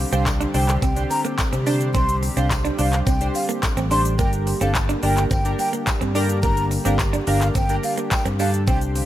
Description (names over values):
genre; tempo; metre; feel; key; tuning
dance-pop; 107 BPM; 4/4; straight; G minor; A4 = 440 Hz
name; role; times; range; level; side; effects
chorused retro synth keys; accompaniment; 0.0-9.0 s; D4 to C5; -28 LUFS; equal; sidechain pumping
chorused pulse-width pad; sustained chords; 0.0-9.1 s; D3 to G4; -29 LUFS; equal; sidechain pumping
vintage muted fingered electric bass; bass; 0.0-9.0 s; G1 to C3; -22 LUFS; equal; sidechain pumping
breathy mellow concert flute; melody; 0.1-8.8 s; F5 to C6; -26 LUFS; equal; sidechain pumping, tape echo
direct-recorded clean electric guitar; riff; 0.1-9.0 s; Bb3 to D4; -29 LUFS; right 4 dB; lush chorus
pop drum kit; drums; 0.1-9.1 s; handclaps, hi-hat, kick drum, shaker; -24 LUFS; equal; none
tambourine; percussion; 0.3-9.1 s; none; -40 LUFS; left 6 dB; none
room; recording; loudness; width
light reverb, digital ambience; none; -18 LUFS; side -13 dB against mid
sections
0.0-9.1 A section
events
none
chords
0.0 Csus2; 4.2 Gm